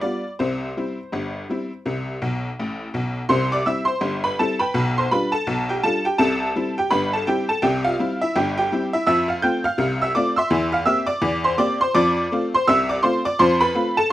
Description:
ragtime piano; 83 BPM; 2/4; swing 59% on 16ths; C major; A4 = 439 Hz
tack piano; solo; 0.0-14.1 s; G1 to G6; -18 LUFS; equal
moderate small room reverb, RT60 0.6 s; rough home demo mix; -19 LUFS; side -14 dB against mid
0.0-3.3 A section; 3.3-14.1 B section
honky-tonk piano fill 2.2-3.3
0.4 C; 4.7 G7/B; 6.2 C; 9.1 F; 10.5 C7/E; 12.0 F

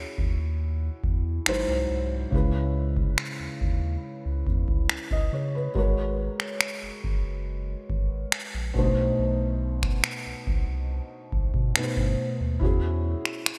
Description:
contemporary R&B; 70 BPM; 4/4; straight; G# minor; A4 = 441 Hz
felt-muted upright piano; accompaniment; 0.0-13.6 s; G#2 to D#5; -32 LUFS; equal; lush chorus
round analog bass; bass; 0.0-13.1 s; F#1 to C#3; -31 LUFS; equal
booming analog drum machine; drums; 0.2-13.6 s; finger snaps, kick drum; -28 LUFS; equal; gated reverb
light reverb; bright 1980s-style digital production; -27 LUFS; mono
0.0-13.6 A section
0.0 E69; 1.5 G#7b13; 2.3 C#m7; 5.8 G#m11; 8.8 B7b9; 12.6 E69

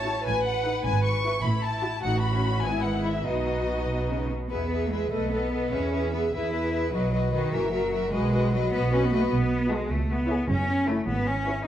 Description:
quick classical-period movement for string orchestra; 101 BPM (dotted quarters); 6/8; rubato; E major; A4 = 440 Hz
rich chamber violin section; melody; 0.0-11.6 s; C#5 to C#6; -32 LUFS; left 4 dB
warm chamber violin section; second line; 0.0-11.6 s; D#4 to C#5; -32 LUFS; left 3 dB
clear chamber cello section; bass; 0.0-11.7 s; G#2 to E4; -29 LUFS; right 1 dB
clear chamber double bass section; bass; 0.0-11.5 s; F#1 to E2; -29 LUFS; right 2 dB
rich symphonic viola section; accompaniment; 0.1-11.6 s; B3 to B4; -32 LUFS; right 1 dB
wet recital hall reverb, RT60 1.6 s; dark, warm production; -23 LUFS; side -11 dB against mid
0.0-4.5 A section; 4.5-11.7 B section
0.3 B7/A; 0.8 E/G#; 1.4 F#m7/A; 2.0 B7/A; 2.6 E/G#; 3.3 B; 4.5 E; 5.1 B7; 5.7 E; 6.9 B; 7.5 F#7; 8.1 B; 9.3 B7; 9.9 C#m; 10.5 F#m7; 11.1 E/G#

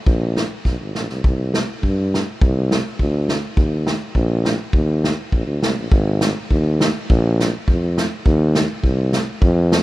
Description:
alpine folk, alpine dance band; 103 BPM; 2/4; straight; Eb major, Ab major from 5.9 s; A4 = 435 Hz
warm tuba; bass; 0.1-9.8 s; Ab1 to G2; -19 LUFS; equal
unplugged drum kit; drums; 0.1-9.8 s; hi-hat, kick drum, snare drum; -19 LUFS; equal
little or no reverb; -16 LUFS; side -17 dB against mid
0.0-5.9 A section; 5.9-9.8 B section

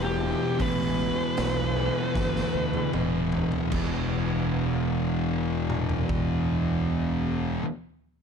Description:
stoner and doom metal; 76 BPM; 4/4; straight; A4 = 444 Hz
fuzz lead guitar; melody; 0.0-2.9 s; G4 to B4; -30 LUFS; left 1 dB; distortion, tape echo
thick fuzz guitar; riff; 0.0-7.6 s; E2 to E3; -30 LUFS; left 11 dB; distortion
thick fuzz guitar; riff; 0.0-7.7 s; E2 to E3; -30 LUFS; right 12 dB; distortion
fuzz fingered electric bass; bass; 0.0-7.6 s; E1 to D2; -30 LUFS; equal; overdrive
raw garage drum kit; drums; 0.6-6.3 s; crash cymbal, hi-hat, kick drum, snare drum, toms; -33 LUFS; equal
light reverb; dark, warm production; -24 LUFS; side -6 dB against mid
0.0-3.7 A section; 3.7-6.9 B section
lead electric guitar solo 0.0-3.7; drum fill 2.2-3.7
0.0 E5

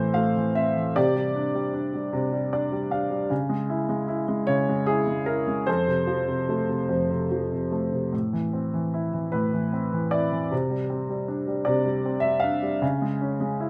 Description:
classical, lyrical solo piano; 51 BPM (dotted quarters); 6/8; rubato; A4 = 440 Hz
warm grand piano; solo; 0.0-13.7 s; F2 to F5; -26 LUFS; equal
little or no reverb; close, detailed microphones; -26 LUFS; mono
0.0-13.7 A section
grand piano fill 2.1-3.3
0.0 Am; 1.0 Csus2; 3.3 C#m; 5.7 F; 8.1 Amadd9; 10.5 Csus2; 12.8 C#5

